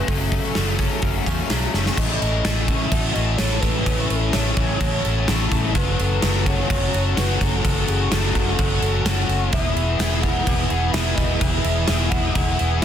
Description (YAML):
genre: rock, shoegaze and dream pop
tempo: 127 BPM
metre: 4/4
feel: straight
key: A major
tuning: A4 = 440 Hz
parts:
  - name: warbly nostalgic lead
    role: melody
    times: 0.0-12.8 s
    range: G#4 to F#5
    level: -29 LUFS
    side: right 3 dB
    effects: chorus, analog delay
  - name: direct-recorded clean electric guitar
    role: arpeggios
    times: 0.0-12.8 s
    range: E3 to G#4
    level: -32 LUFS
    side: right 13 dB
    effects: wide subtle chorus, analog delay
  - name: biting overdriven guitar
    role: riff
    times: 0.0-12.8 s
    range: F#2 to A4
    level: -25 LUFS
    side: left 8 dB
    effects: analog chorus
  - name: direct-recorded clean electric guitar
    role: riff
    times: 0.0-2.0, 9.5-12.8 s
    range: E3 to C#5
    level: -34 LUFS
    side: right 13 dB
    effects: reverse reverb
  - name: vintage muted fingered electric bass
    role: bass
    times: 0.1-12.8 s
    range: E1 to E2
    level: -23 LUFS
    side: equal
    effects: none
  - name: gated 80s drum kit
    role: drums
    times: 0.1-12.8 s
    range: crash cymbal, hi-hat, kick drum, snare drum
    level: -22 LUFS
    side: equal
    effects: none
  - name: tambourine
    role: percussion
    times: 0.1-12.7 s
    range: none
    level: -39 LUFS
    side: right 18 dB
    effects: none
room: little or no reverb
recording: dense, heavily limited modern master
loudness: -18 LUFS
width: side -9 dB against mid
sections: 0.0-2.0 A section; 2.0-12.8 B section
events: drum fill 1.7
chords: 0.0 F#madd9; 2.0 A6; 5.8 F#m7; 9.5 E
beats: | 0.09 0.56 1.03 1.51 | 1.98 2.45 2.93 3.40 | 3.87 4.34 4.81 5.29 | 5.76 6.23 6.70 7.17 | 7.64 8.11 8.59 9.06 | 9.53 10.00 10.47 10.94 | 11.41 11.89 12.36 12.83